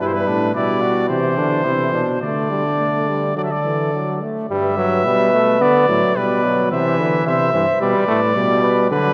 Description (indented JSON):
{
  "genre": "classical, imitative canzona for brass ensemble",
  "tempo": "108 BPM",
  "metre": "4/4",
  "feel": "straight",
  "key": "G major",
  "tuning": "A4 = 441 Hz",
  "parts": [
    { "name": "clear trumpet", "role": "melody", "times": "0.0-9.1 s", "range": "B4 to E5", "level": "-23 LUFS", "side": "equal", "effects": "none" },
    { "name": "mellow flugelhorn", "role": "second line", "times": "0.0-8.9 s", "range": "D4 to D5", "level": "-25 LUFS", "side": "equal", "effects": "none" },
    { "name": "clear trombone", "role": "accompaniment", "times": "0.0-9.1 s", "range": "E3 to B3", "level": "-23 LUFS", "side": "equal", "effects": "none" },
    { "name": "clear bass trombone", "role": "bass", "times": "0.0-9.1 s", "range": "G2 to D3", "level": "-25 LUFS", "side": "equal", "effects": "none" }
  ],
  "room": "wet cathedral reverb, RT60 4.4 s",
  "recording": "none",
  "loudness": "-18 LUFS",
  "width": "mono",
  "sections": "0.0-4.5 A section; 4.5-9.1 B section",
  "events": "none",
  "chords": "0.0 G; 1.1 C; 2.2 Dsus4; 3.4 D; 4.5 G; 5.6 Bm; 6.7 C; 7.8 G"
}